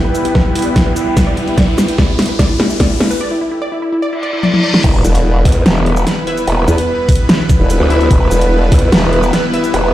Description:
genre	heavy wobble dubstep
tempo	147 BPM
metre	4/4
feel	half-time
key	E minor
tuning	A4 = 441 Hz
part	wide unison pluck	melody	0.0-4.8 s	E4 to D5	-19 LUFS	equal	ping-pong delay
part	supersaw pad	sustained chords	0.0-9.9 s	G3 to B4	-20 LUFS	equal	sidechain pumping, low-pass filter
part	riser, reverse cymbal and impact	sound effects	0.1-6.5 s	none	-22 LUFS	left 1 dB	none
part	ethereal airy pad	texture	0.0-9.9 s	E4 to G5	-23 LUFS	right 3 dB	ensemble chorus, built-in reverb, phaser, sidechain pumping
part	dubstep drum kit	drums	0.1-9.8 s	crash cymbal, hi-hat, shaker, snare drum, toms	-15 LUFS	equal	overdrive
part	electronic kick drum	drums	0.4-8.8 s	none	-12 LUFS	equal	overdrive
part	growl bass	bass	4.8-9.9 s	E1 to E2	-13 LUFS	equal	distortion, chorus, overdrive
part	formant-sweep wobble bass	bass	5.0-8.7 s	E1 to E2	-12 LUFS	equal	chorus, overdrive
part	orchestra-hit-like synth stab	stabs	6.3-9.6 s	E4 to E5	-21 LUFS	left 4 dB	built-in reverb, cassette tape, ping-pong delay
room	light reverb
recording	played on a big sound system in a bare room, large studio reverb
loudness	-10 LUFS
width	side -14 dB against mid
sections	0.0-4.8 A section; 4.8-9.9 B section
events	build-up 0.0-4.8; drum fill 0.0-3.2, 4.4-4.8; riser 0.1-3.2; filter sweep on supersaw synth 0.0-4.8; filter sweep on synth pluck 0.0-4.8; break 3.2-4.8; reverse cymbal 4.2-4.8; drop 4.8-9.9; impact 4.8-6.5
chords	0.0 Em

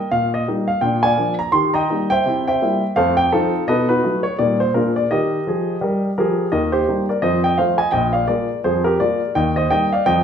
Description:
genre	jazz, stride piano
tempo	169 BPM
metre	4/4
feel	swing 59% on 8ths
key	Eb major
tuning	A4 = 440 Hz
part	warm baby grand piano	solo	0.0-10.2 s	Bb1 to C6	-16 LUFS	equal	none
room	wet large studio reverb, RT60 1.0 s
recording	band playing live in one room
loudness	-16 LUFS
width	side -8 dB against mid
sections	0.0-6.5 A section; 6.5-10.2 A section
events	none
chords	0.0 Eb; 0.8 Bb7; 1.5 Eb; 2.3 C7; 3.0 F7; 3.7 B7; 4.4 Eb/Bb; 4.7 Bb7; 5.1 Eb; 7.2 F7; 7.9 Bb7; 9.3 Eb

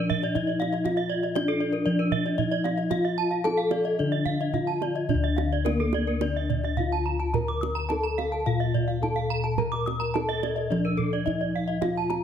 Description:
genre	Balinese gamelan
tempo	107-120 BPM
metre	4/4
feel	straight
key	D pelog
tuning	A4 = 440 Hz
part	gamelan-type bronze metallophone	melody	0.0-12.2 s	Bb3 to Bb4	-29 LUFS	left 1 dB	none
part	gamelan-type bronze metallophone	arpeggios	0.0-12.1 s	A4 to D6	-32 LUFS	right 6 dB	none
part	gamelan-type bossed gongs	bass	0.0-12.2 s	D2 to Bb4	-28 LUFS	left 2 dB	none
part	kendang	percussion	0.1-12.2 s	none	-32 LUFS	right 11 dB	none
part	gamelan-type bronze metallophone	arpeggios	0.2-12.2 s	A4 to Eb6+35c	-32 LUFS	left 4 dB	none
room	light reverb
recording	close, detailed microphones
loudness	-24 LUFS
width	side -8 dB against mid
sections	0.0-5.1 A section; 5.1-12.2 B section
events	none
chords	none

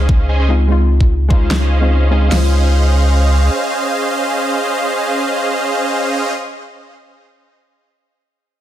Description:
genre	future bass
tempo	148 BPM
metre	4/4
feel	half-time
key	Db major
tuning	A4 = 437 Hz
part	soft round pluck	accompaniment	0.0-6.4 s	Ab3 to C5	-22 LUFS	left 3 dB	chorus, sidechain pumping, digital delay
part	supersaw chords	riff	0.0-6.3 s	Db4 to Ab5	-17 LUFS	right 1 dB	sidechain pumping, low-pass filter, digital delay
part	saturated sub bass	bass	0.0-3.5 s	Db2	-12 LUFS	equal	sidechain pumping
part	pop drum kit	drums	0.1-2.4 s	hi-hat, kick drum, snare drum	-14 LUFS	equal	overdrive
part	electronic snare drum	drums	1.5-1.6 s	none	-22 LUFS	equal	overdrive
room	light reverb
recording	dense, heavily limited modern master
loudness	-12 LUFS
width	side -12 dB against mid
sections	0.0-2.3 A section; 2.3-5.6 B section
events	filter sweep on sub bass 0.0-2.3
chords	0.0 Dbmaj7

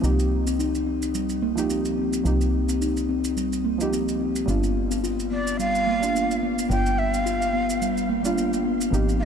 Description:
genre	organic downtempo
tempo	108 BPM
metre	4/4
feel	swing 55% on 16ths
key	unclear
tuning	A4 = 436 Hz
part	deep mellow chord stab	accompaniment	0.0-9.2 s	F3 to G4	-29 LUFS	right 3 dB	chorus, shimmer reverb, ping-pong delay
part	steel tongue drum	arpeggios	0.0-9.2 s	G3 to F4	-25 LUFS	left 2 dB	low-pass filter, shimmer reverb, ping-pong delay
part	woody FM bass	bass	0.0-9.2 s	G1 to C2	-28 LUFS	equal	none
part	shaker	drums	0.0-9.2 s	none	-36 LUFS	right 4 dB	overdrive
part	breathy bright ney	melody	5.3-9.2 s	D5 to G5	-26 LUFS	right 1 dB	vintage 12-bit sampler grit, shimmer reverb, tape echo
room	moderate huge ambient reverb, RT60 4.1 s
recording	none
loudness	-21 LUFS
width	side -7 dB against mid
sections	0.0-9.2 A section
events	filter sweep on steel tongue drum 0.0-9.2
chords	0.0 Cm7; 4.5 G7

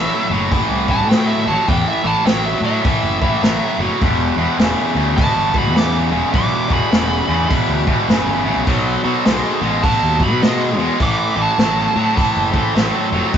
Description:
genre	blues rock power trio and southern rock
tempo	103 BPM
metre	4/4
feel	swing 62% on 8ths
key	unclear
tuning	A4 = 440 Hz
part	bluesy overdriven lead guitar	melody	0.0-13.1 s	D#5 to D6	-21 LUFS	right 3 dB	distortion
part	tight distorted guitar	riff	0.0-13.4 s	E2 to G#3	-18 LUFS	equal	distortion
part	fuzz fingered electric bass	bass	0.0-13.4 s	E1 to B2	-22 LUFS	left 1 dB	overdrive
part	vintage drum kit	drums	0.5-13.4 s	hi-hat, kick drum, snare drum	-19 LUFS	equal	none
part	overdriven tonewheel organ	sustained chords	4.0-13.4 s	D#4 to C5	-28 LUFS	equal	slow rotary speaker
room	light reverb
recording	rough rehearsal-room recording, nothing above 7.9 kHz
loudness	-14 LUFS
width	side -8 dB against mid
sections	0.0-13.4 A section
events	none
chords	0.0 A5; 4.0 Em; 8.7 B7b9; 11.0 Am

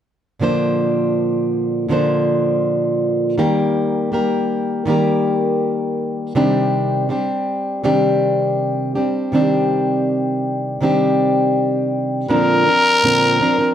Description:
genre	pop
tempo	81 BPM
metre	4/4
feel	straight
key	unclear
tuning	A4 = 442 Hz
part	fingerpicked plugged-in steel-string acoustic guitar	accompaniment	0.4-13.7 s	Bb2 to C5	-16 LUFS	equal	none
part	growling trumpet	melody	12.3-13.7 s	Bb4	-14 LUFS	left 1 dB	none
room	moderate small room reverb, RT60 0.6 s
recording	none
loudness	-15 LUFS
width	side -9 dB against mid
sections	0.4-12.3 A section; 12.3-13.7 B section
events	none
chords	0.4 Bbadd9; 3.4 Eb; 6.4 Cmadd9; 12.3 Bbadd9

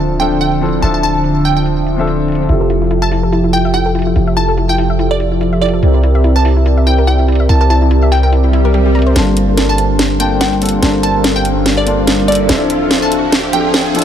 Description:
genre	future bass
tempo	144 BPM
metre	4/4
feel	swing 56% on 16ths, half-time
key	unclear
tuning	A4 = 440 Hz
part	warm baby grand piano	accompaniment	0.0-2.5, 9.1-14.0 s	F3 to A5	-20 LUFS	left 4 dB	tape echo
part	soft supersaw	riff	0.0-14.0 s	D3 to A5	-15 LUFS	equal	low-pass filter
part	long sustained 808-style bass	bass	0.0-14.0 s	D1 to C2	-14 LUFS	equal	none
part	glassy wavetable pluck	melody	0.2-13.9 s	D5 to A5	-18 LUFS	right 1 dB	chorus, tape echo
part	trap drum kit	drums	0.2-14.0 s	hi-hat, snare drum	-17 LUFS	equal	low-pass filter on hats, low-pass filter on cymbals, low-pass filter on snare
part	soft round pluck	arpeggios	2.5-9.1 s	E4 to Bb5	-22 LUFS	left 2 dB	chorus, tape echo
part	swell and riser	sound effects	8.5-14.0 s	none	-24 LUFS	right 1 dB	none
room	light reverb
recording	none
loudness	-10 LUFS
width	side -9 dB against mid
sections	0.0-9.2 A section; 9.2-14.0 B section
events	swell 8.5-9.2; build-up 9.2-14.0; drum fill 9.2-14.0; riser 9.2-14.0; filter sweep on supersaw synth 9.2-14.0; filter sweep 9.2-14.0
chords	0.0 Dm7; 2.5 Fmaj7; 5.8 C7; 9.2 Gm11; 12.5 Dm7

